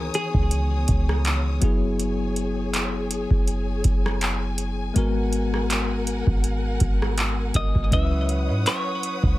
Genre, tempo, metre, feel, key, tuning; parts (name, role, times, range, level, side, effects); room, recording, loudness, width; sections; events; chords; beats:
contemporary R&B; 81 BPM; 4/4; swing 54% on 16ths; G# minor; A4 = 440 Hz
semi-hollow electric guitar; melody; 0.0-1.2, 7.6-9.4 s; G#4 to E5; -28 LUFS; equal; phaser, tape echo
bell-like tine electric piano; accompaniment; 0.0-9.4 s; E3 to B4; -28 LUFS; left 3 dB; fast stereo tremolo
warm studio string section; sustained chords; 0.0-9.4 s; B3 to D#6; -34 LUFS; left 1 dB; sidechain pumping
warm 808-style bass; bass; 0.0-9.4 s; F#1 to G#2; -24 LUFS; equal
booming analog drum machine; drums; 0.1-9.4 s; handclaps, hi-hat, kick drum, rim click; -24 LUFS; equal; overdrive
digital ambience; echo-heavy mix; -21 LUFS; side -16 dB against mid
0.0-9.4 A section
0.0 C#m11; 1.6 F#9sus4; 5.0 G#m9; 7.9 C#m11
0.51 1.25 | 1.99 2.73 3.48 4.22 | 4.96 5.70 6.44 7.18 | 7.92 8.66